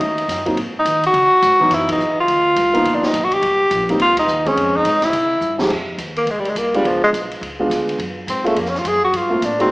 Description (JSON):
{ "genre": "jazz, small-group swing and bop", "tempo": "210 BPM", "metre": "4/4", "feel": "swing 62% on 8ths", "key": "unclear", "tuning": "A4 = 441 Hz", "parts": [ { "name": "breathy tenor saxophone", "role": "melody", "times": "0.0-9.7 s", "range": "F3 to Ab4", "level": "-16 LUFS", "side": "equal", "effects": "none" }, { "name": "upright bass", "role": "bass", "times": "0.0-9.7 s", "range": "G1 to Eb3", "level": "-30 LUFS", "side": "equal", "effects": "none" }, { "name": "open jazz drum kit", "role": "drums", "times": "0.0-9.6 s", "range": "crash cymbal, hi-hat, kick drum, ride cymbal, snare drum", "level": "-28 LUFS", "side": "equal", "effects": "none" }, { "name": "dark grand piano", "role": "accompaniment", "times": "0.5-9.7 s", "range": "F2 to Ab4", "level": "-21 LUFS", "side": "equal", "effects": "none" } ], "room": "moderate recital hall reverb, RT60 1.4 s", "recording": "recorded in a church or concert hall, small speaker sound", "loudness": "-15 LUFS", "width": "side -23 dB against mid", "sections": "0.0-5.7 A section; 5.7-9.7 B section", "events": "band accent 1.9, 4.1; drum fill 5.4; tenor saxophone solo 5.7-9.7", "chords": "0.0 Ebm; 0.6 Ab5; 1.1 Dbm11; 2.3 Cm11; 2.8 G7alt; 3.4 Cm7; 4.6 Dbmaj9/F; 5.1 C; 5.7 F7(no3); 6.8 Db7b9; 8.0 Gbmaj7sus2; 9.1 Gm11", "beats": "| 0.00 0.28 0.57 0.85 | 1.14 1.42 1.71 1.99 | 2.28 2.56 2.85 3.13 | 3.42 3.70 3.99 4.27 | 4.56 4.84 5.13 5.42 | 5.70 5.99 6.27 6.56 | 6.84 7.13 7.42 7.70 | 7.99 8.27 8.56 8.84 | 9.13 9.41 9.70" }